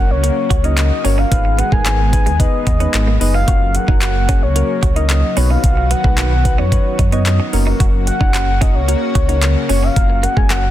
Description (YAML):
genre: dance-pop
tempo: 111 BPM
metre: 4/4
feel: straight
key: F# major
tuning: A4 = 440 Hz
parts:
  - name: soft octave-layered synth lead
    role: melody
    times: 0.0-10.7 s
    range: C#5 to G#5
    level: -21 LUFS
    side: left 2 dB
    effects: chorus
  - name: soft electric-piano-like synth keys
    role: accompaniment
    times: 0.0-10.7 s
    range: A#3 to C#5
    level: -24 LUFS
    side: left 1 dB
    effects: chorus, phaser, sidechain pumping
  - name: lush unison pad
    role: sustained chords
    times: 0.0-10.7 s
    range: C#3 to G#4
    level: -24 LUFS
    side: left 1 dB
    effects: chorus, sidechain pumping
  - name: direct-recorded clean electric guitar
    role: riff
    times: 0.0-10.7 s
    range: G#3 to F#4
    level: -28 LUFS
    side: right 7 dB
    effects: wide subtle chorus
  - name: sub bass with octave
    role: bass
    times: 0.0-10.7 s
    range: F#1 to F#2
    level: -16 LUFS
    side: equal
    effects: sidechain pumping
  - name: smooth R&B drum kit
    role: drums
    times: 0.2-10.6 s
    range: handclaps, hi-hat, kick drum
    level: -17 LUFS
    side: equal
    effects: none
  - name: group handclap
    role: percussion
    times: 0.8-10.6 s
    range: none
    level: -30 LUFS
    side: left 6 dB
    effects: none
room: little or no reverb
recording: dense, heavily limited modern master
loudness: -12 LUFS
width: side -13 dB against mid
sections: 0.0-10.7 A section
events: none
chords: 0.0 F#; 1.3 G#m; 3.5 F#; 5.4 B; 7.5 F#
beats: 0.23 0.77 | 1.31 1.85 2.40 2.94 | 3.48 4.02 4.56 5.10 | 5.64 6.18 6.72 7.26 | 7.80 8.34 8.88 9.42 | 9.96 10.50